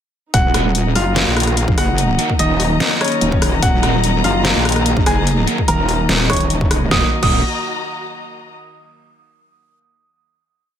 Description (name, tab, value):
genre	heavy wobble dubstep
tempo	146 BPM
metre	4/4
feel	half-time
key	Eb minor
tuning	A4 = 441 Hz
part	clear baby grand piano	melody	0.3-7.4 s	Db4 to Eb6	-22 LUFS	left 1 dB	dub echo
part	lush unison pad	sustained chords	0.9-7.1 s	Eb3 to Bb3	-26 LUFS	right 1 dB	chorus, sidechain pumping
part	wobble bass	bass	0.3-7.4 s	Eb1 to Bb1	-18 LUFS	equal	chorus, overdrive
part	dubstep drum kit	drums	0.3-7.3 s	crash cymbal, hi-hat, rim click, snare drum	-20 LUFS	left 1 dB	none
part	electronic kick drum	drums	0.3-7.3 s	none	-18 LUFS	equal	none
part	dark studio string section	texture	0.3-8.5 s	Eb4 to Bb5	-24 LUFS	left 3 dB	sidechain pumping
part	sludgy distorted guitar	stabs	0.5-7.4 s	Bb3 to Gb4	-26 LUFS	right 1 dB	overdrive, dub echo
part	metallic wobble bass	bass	1.0-6.9 s	Eb1 to Bb1	-18 LUFS	equal	distortion, chorus, overdrive
room	light reverb, digital ambience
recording	none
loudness	-13 LUFS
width	side -9 dB against mid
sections	0.3-6.9 drop; 6.9-8.6 final chord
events	drop 0.3-6.9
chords	0.3 Ebm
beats	| 0.34 0.75 1.16 1.57 | 1.98 2.39 2.80 3.21 | 3.63 4.04 4.45 4.86 | 5.27 5.68 6.09 6.50 | 6.91 7.32 7.74 8.15